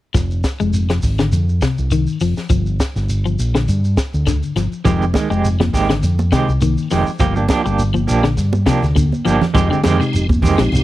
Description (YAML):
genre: afrobeat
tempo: 102 BPM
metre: 4/4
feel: swing 54% on 16ths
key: F dorian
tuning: A4 = 439 Hz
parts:
  - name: electric guitar at the edge of break-up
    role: arpeggios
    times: 0.1-10.8 s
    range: C3 to Ab3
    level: -21 LUFS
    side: left 5 dB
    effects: none
  - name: fingered electric bass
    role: bass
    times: 0.1-10.8 s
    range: F1 to G2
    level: -18 LUFS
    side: equal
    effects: none
  - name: compact cocktail drum kit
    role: drums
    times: 0.1-10.8 s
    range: hi-hat, kick drum, snare drum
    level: -20 LUFS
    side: equal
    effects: none
  - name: shekere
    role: percussion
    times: 0.1-10.8 s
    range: none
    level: -26 LUFS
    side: right 1 dB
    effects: none
  - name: electric guitar at the edge of break-up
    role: stabs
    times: 4.8-10.6 s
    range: Eb3 to G4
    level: -19 LUFS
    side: right 4 dB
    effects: tremolo
  - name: congas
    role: percussion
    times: 4.9-10.8 s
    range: none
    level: -23 LUFS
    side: right 3 dB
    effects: none
  - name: tonewheel organ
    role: accompaniment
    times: 10.0-10.8 s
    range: Ab3 to G4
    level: -21 LUFS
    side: right 1 dB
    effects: slow rotary speaker, overdrive, chorus vibrato
room: small room ambience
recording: dry, close 1970s-style studio recording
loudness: -14 LUFS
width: side -15 dB against mid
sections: 0.1-9.6 A section; 9.6-10.8 B section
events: drum fill 9.1-9.6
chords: 0.1 Fm; 2.5 G7(no3); 4.9 Fm9; 7.2 Gm7; 9.6 Fm9